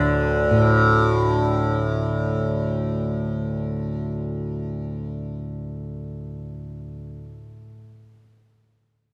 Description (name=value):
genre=indian classical, Hindustani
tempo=free time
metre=none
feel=none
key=unclear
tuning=A4 = 438 Hz
part: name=sitar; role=melody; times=0.0-2.2 s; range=D4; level=-38 LUFS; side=equal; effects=none
part: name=tanpura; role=drone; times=0.0-7.7 s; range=D2 to D3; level=-24 LUFS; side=equal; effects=none
room=light reverb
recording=dark, warm production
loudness=-23 LUFS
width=mono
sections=none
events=none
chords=none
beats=free time